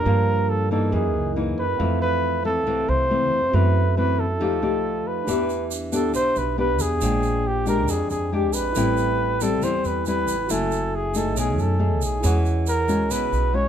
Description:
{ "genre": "bossa nova", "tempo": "138 BPM", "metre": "4/4", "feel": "straight", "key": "unclear", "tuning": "A4 = 440 Hz", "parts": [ { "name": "breathy flugelhorn", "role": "melody", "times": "0.0-13.7 s", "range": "G4 to C#5", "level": "-24 LUFS", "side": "right 1 dB", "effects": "none" }, { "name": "barky tine electric piano", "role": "accompaniment", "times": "0.0-13.7 s", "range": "C4 to G#5", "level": "-31 LUFS", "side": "right 5 dB", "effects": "medium stereo tremolo" }, { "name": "nylon-string guitar", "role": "accompaniment", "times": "0.0-13.7 s", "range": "F2 to G#4", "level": "-25 LUFS", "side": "left 4 dB", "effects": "none" }, { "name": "upright bass", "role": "bass", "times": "0.0-13.7 s", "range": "F#1 to G2", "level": "-25 LUFS", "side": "right 1 dB", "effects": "none" }, { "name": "egg shaker", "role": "percussion", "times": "5.3-13.5 s", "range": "none", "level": "-34 LUFS", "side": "right 7 dB", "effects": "none" } ], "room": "light reverb", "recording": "band playing live in one room", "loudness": "-20 LUFS", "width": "side -9 dB against mid", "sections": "0.0-13.7 A section", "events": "none", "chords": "0.1 Gm7; 0.9 F#13; 1.8 Fmaj7; 3.5 F#m7b5; 4.4 F9; 5.3 Em7; 7.0 Bb13; 8.8 Am7; 10.5 F#m9; 11.4 B13; 12.2 E69" }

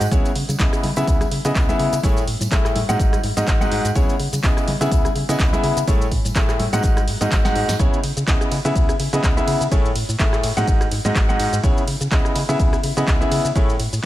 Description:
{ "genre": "piano house", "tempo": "125 BPM", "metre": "4/4", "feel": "swing 56% on 16ths", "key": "C# minor", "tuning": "A4 = 440 Hz", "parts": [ { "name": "clear baby grand piano", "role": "riff", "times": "0.0-13.7 s", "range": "G#2 to F#5", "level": "-22 LUFS", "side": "equal", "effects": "sidechain pumping, ping-pong delay" }, { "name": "organ-like FM bass", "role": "bass", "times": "0.0-14.0 s", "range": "G#1 to C#3", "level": "-24 LUFS", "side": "equal", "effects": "sidechain pumping" }, { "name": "punchy analog drum machine", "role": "drums", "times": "0.0-14.0 s", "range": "handclaps, hi-hat, ride cymbal, rim click, shaker, snare drum", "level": "-26 LUFS", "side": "equal", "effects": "none" }, { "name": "tambourine and congas", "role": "percussion", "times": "0.0-7.8 s", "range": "none", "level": "-32 LUFS", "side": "equal", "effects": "none" }, { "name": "electronic kick drum", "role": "drums", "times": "0.1-13.7 s", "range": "none", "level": "-20 LUFS", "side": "equal", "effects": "none" } ], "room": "little or no reverb", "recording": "none", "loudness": "-16 LUFS", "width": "side -14 dB against mid", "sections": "0.0-7.8 A section; 7.8-14.1 A section", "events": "drop 0.0-7.8, 7.8-14.1; drum fill 7.3-7.8", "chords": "0.1 C#m7; 2.0 Amaj7; 3.0 G#5; 4.0 C#m7; 5.9 Amaj7; 6.8 G#5; 7.8 C#m7; 9.7 Amaj7; 10.7 G#5; 11.6 C#m7" }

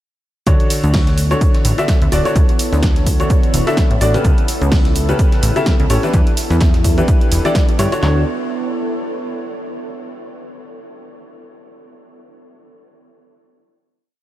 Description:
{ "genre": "piano house", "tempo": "127 BPM", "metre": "4/4", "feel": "swing 56% on 16ths", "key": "D major", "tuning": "A4 = 442 Hz", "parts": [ { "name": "clear upright piano", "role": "riff", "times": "0.5-8.2 s", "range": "C#3 to E5", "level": "-21 LUFS", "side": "left 1 dB", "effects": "sidechain pumping, tape echo" }, { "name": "plucky analog bass", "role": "bass", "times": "0.5-8.2 s", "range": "D1 to G2", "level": "-16 LUFS", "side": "equal", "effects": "tube saturation, sidechain pumping" }, { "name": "dusty soul sampler-style drum kit", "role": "drums", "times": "0.5-8.0 s", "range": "hi-hat, shaker, snare drum", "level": "-33 LUFS", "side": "right 1 dB", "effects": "none" }, { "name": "punchy analog drum machine", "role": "drums", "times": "0.5-8.2 s", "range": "handclaps, kick drum, snare drum", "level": "-14 LUFS", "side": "equal", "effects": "none" }, { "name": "punchy analog drum machine", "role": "drums", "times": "0.5-8.0 s", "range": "cabasa, hi-hat, snare drum", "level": "-25 LUFS", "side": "right 1 dB", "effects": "none" }, { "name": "warbly tape-like pad", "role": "texture", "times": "1.2-9.9 s", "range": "B3 to C#5", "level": "-25 LUFS", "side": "equal", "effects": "chorus, built-in reverb, sidechain pumping" } ], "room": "light reverb", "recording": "none", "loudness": "-13 LUFS", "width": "side -14 dB against mid", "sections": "0.5-8.0 drop; 8.0-9.9 final chord", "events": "drop 0.5-8.0", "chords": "0.5 Dmaj7; 4.2 A9/C#; 6.1 Em7; 8.0 Dmaj7(no3)" }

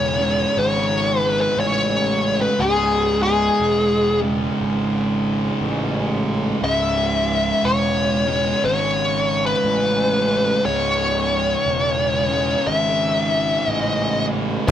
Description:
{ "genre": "metal", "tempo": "60 BPM", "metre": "4/4", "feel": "swing 62% on 8ths", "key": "C# minor", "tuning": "A4 = 440 Hz", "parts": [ { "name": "fuzz lead guitar", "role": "melody", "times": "0.0-14.7 s", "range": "G#4 to E5", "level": "-19 LUFS", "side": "left 2 dB", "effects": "wah, distortion" }, { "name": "thick fuzz guitar", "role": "riff", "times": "0.0-14.7 s", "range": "C#2 to C#3", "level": "-22 LUFS", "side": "right 2 dB", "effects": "distortion" }, { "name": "fuzz picked electric bass", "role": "bass", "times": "0.0-14.7 s", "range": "C#1 to A1", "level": "-26 LUFS", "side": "equal", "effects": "overdrive, tube saturation" } ], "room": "light reverb", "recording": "rough rehearsal-room recording", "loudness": "-17 LUFS", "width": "side -10 dB against mid", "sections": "0.0-14.7 A section", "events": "none", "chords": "0.0 C#m" }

